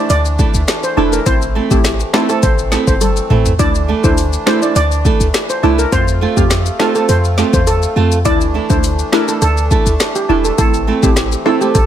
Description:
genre	dancehall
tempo	103 BPM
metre	4/4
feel	straight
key	D minor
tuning	A4 = 440 Hz
part	steel pan	melody	0.0-11.8 s	G4 to D5	-19 LUFS	right 1 dB	digital delay
part	accordion	sustained chords	0.0-11.9 s	E3 to F4	-25 LUFS	equal	light tremolo tuning, sidechain pumping
part	flamenco guitar	arpeggios	0.0-11.8 s	A3 to A4	-19 LUFS	right 6 dB	none
part	clean 808-style bass	bass	0.1-11.9 s	E1 to F2	-16 LUFS	equal	none
part	afro-pop drum kit	drums	0.1-11.9 s	hi-hat, kick drum, rim click, snare drum, toms	-16 LUFS	equal	overdrive
part	maracas and timbales	percussion	0.1-11.9 s	none	-25 LUFS	left 8 dB	none
part	glassy wavetable pluck	accompaniment	1.0-11.6 s	A3 to F4	-18 LUFS	equal	chorus, sidechain pumping
room	studio reverb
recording	none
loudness	-11 LUFS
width	side -10 dB against mid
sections	0.0-11.9 A section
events	drum fill 3.0-3.6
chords	0.0 Dsus2; 1.3 Am; 3.6 Dsus2; 5.9 F; 8.3 Dsus2; 10.6 Am

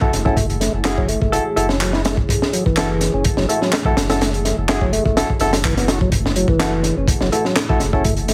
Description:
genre	breakbeat, breaks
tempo	125 BPM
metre	4/4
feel	swing 53% on 16ths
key	unclear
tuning	A4 = 436 Hz
part	deep dark ambient pad	sustained chords	0.0-8.3 s	A3 to G#4	-30 LUFS	equal	chorus, built-in reverb, sidechain pumping
part	warm baby grand piano	stabs	0.0-8.0 s	E4 to A4	-25 LUFS	equal	delay
part	saturated sub bass	bass	0.0-8.3 s	F#1 to A1	-26 LUFS	equal	none
part	crunchy breakbeat drum kit	drums	0.0-8.3 s	hi-hat, kick drum, snare drum	-22 LUFS	equal	none
part	tonewheel organ	riff	0.3-8.3 s	E3 to F#4	-25 LUFS	equal	overdrive, chorus vibrato, slow rotary speaker, tube saturation, vintage 12-bit sampler grit, delay
part	electronic handclaps	drums	0.8-7.7 s	none	-28 LUFS	equal	none
room	light reverb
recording	heavily compressed radio sound, multiband compression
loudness	-18 LUFS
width	mono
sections	0.0-8.3 A section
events	none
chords	0.0 F#m7

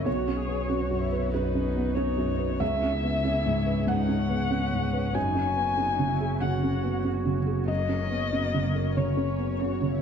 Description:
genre	neoclassical piano and strings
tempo	94 BPM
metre	4/4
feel	rubato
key	unclear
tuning	A4 = 440 Hz
part	muted violin	melody	0.0-10.0 s	B4 to G#5	-31 LUFS	left 6 dB	none
part	muted cello	second line	0.0-10.0 s	A#3 to G#4	-36 LUFS	right 6 dB	none
part	felt-muted upright piano	accompaniment	0.0-10.0 s	B1 to G#5	-27 LUFS	right 1 dB	none
part	phased analog pad	sustained chords	0.0-10.0 s	B3 to C#5	-40 LUFS	right 1 dB	phaser, chorus
part	muted double bass	bass	0.0-10.0 s	F#1 to C#2	-31 LUFS	equal	none
room	wet recital hall reverb, RT60 1.7 s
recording	dark, warm production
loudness	-24 LUFS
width	side -7 dB against mid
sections	0.0-10.0 A section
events	none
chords	0.1 Bsus2; 2.6 C#m7; 5.2 F#sus2; 7.7 F#

